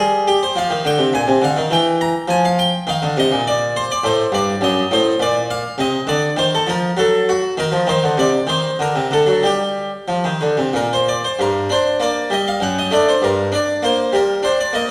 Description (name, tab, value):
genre	classical, baroque-style suite movement for harpsichord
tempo	90-106 BPM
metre	3/4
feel	rubato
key	G minor from 4.0 s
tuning	A4 = 444 Hz
part	harpsichord	solo	0.0-14.9 s	F#2 to Bb5	-17 LUFS	equal	none
room	wet recital hall reverb, RT60 1.3 s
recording	recorded in a church or concert hall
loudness	-17 LUFS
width	mono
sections	0.0-11.4 A section; 11.4-14.9 B section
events	none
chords	0.0 Eb6 (rootless); 0.6 F5; 1.7 N.C.; 2.3 F5; 4.0 F#dim7; 5.2 N.C.; 5.8 Cm11; 7.0 N.C.; 7.6 Eb5; 8.2 Cmadd9; 8.8 D7; 9.4 Gm; 12.6 D/F#; 13.2 Gm